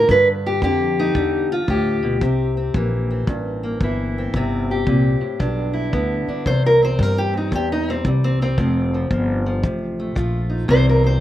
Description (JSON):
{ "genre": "acoustic country blues, solo or duo", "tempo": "113 BPM", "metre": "4/4", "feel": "swing 65% on 8ths", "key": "C mixolydian", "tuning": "A4 = 440 Hz", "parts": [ { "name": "fingerpicked steel-string acoustic guitar", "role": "melody", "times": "0.0-11.2 s", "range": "E2 to C5", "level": "-20 LUFS", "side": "equal", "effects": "slapback echo" }, { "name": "upright bass", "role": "bass", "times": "0.0-11.2 s", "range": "F1 to G2", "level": "-20 LUFS", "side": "equal", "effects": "none" }, { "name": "kick drum", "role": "drums", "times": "0.1-10.8 s", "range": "none", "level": "-23 LUFS", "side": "equal", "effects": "none" } ], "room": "little or no reverb", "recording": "recorded outdoors, with no room sound", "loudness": "-17 LUFS", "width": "side -13 dB against mid", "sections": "0.0-6.5 A section; 6.5-11.2 B section", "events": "steel-string acoustic guitar solo 6.5-11.2", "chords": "0.0 G7(no3); 2.2 C7; 5.4 G; 6.5 C; 8.6 F; 10.7 C7" }